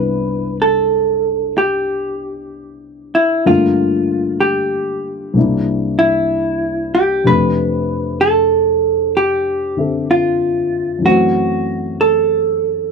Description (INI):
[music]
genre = jazz ballad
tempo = 63 BPM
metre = 4/4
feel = swing 67% on 8ths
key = C major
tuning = A4 = 440 Hz
[part]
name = vintage hollow-body jazz guitar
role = melody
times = 0.0-12.9 s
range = E4 to B4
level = -15 LUFS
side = right 2 dB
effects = none
[part]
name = dark baby grand piano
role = accompaniment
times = 0.0-12.9 s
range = C2 to E5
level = -19 LUFS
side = left 3 dB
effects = none
[sound]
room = moderate studio ambience, RT60 0.5 s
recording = dry, close 1970s-style studio recording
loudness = -13 LUFS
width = side -5 dB against mid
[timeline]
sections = 0.0-12.9 A section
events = none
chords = 0.0 Cmaj9; 3.5 Gm7; 5.4 C9; 7.3 F69; 11.0 F#m7b5